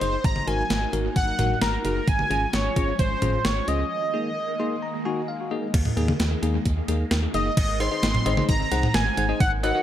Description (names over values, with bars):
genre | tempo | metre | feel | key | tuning
synth-pop | 131 BPM | 4/4 | straight | Ab mixolydian | A4 = 441 Hz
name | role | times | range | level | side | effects
octave-doubled lead | melody | 0.0-9.8 s | Bb4 to C6 | -26 LUFS | equal | chorus, phaser, analog delay
bell-like tine electric piano | accompaniment | 0.0-9.8 s | Bb3 to C6 | -30 LUFS | left 3 dB | fast stereo tremolo, analog delay
phased string machine | sustained chords | 0.0-9.8 s | Eb3 to Eb4 | -34 LUFS | equal | ensemble chorus, phaser
solid FM bass | bass | 0.0-9.7 s | Gb1 to Eb2 | -27 LUFS | equal | none
clean 12-bit digital drum machine | drums | 0.0-9.7 s | cowbell, crash cymbal, hi-hat, kick drum, snare drum, toms | -25 LUFS | right 1 dB | analog delay
room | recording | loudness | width
light reverb | echo-heavy mix | -21 LUFS | side -11 dB against mid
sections
0.0-5.7 A section; 5.7-7.6 B section; 7.6-9.8 C section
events
break 3.9-5.7; tine electric piano fill 4.4-5.7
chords
0.2 Ebm/Ab; 2.1 Db/Ab; 3.9 Ebsus4; 7.6 Ab